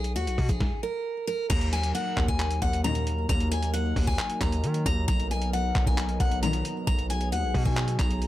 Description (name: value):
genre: hip hop, trap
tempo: 134 BPM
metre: 4/4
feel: half-time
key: Eb minor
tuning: A4 = 437 Hz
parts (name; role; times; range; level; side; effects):
- picked steel-string acoustic guitar; melody; 0.0-8.3 s; F#4 to Bb5; -31 LUFS; left 2 dB; none
- distorted 808-style bass; bass; 0.0-8.3 s; A#1 to Eb3; -28 LUFS; equal; distortion
- boom bap sampler-style drum kit; drums; 0.0-8.3 s; crash cymbal, handclaps, hi-hat, kick drum, snare drum; -28 LUFS; equal; none
- dark analog pad; sustained chords; 1.5-8.3 s; Gb3 to Bb4; -34 LUFS; right 2 dB; chorus
- dark symphonic string section; stabs; 2.8-3.0, 6.4-6.6 s; Bb1 to Eb3; -30 LUFS; left 5 dB; none
room: little or no reverb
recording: dark, warm production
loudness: -24 LUFS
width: side -14 dB against mid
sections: 0.0-1.5 A section; 1.5-8.3 B section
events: stop 0.6-1.5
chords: 0.0 Bmaj7; 1.5 Ebm; 5.1 Bmaj7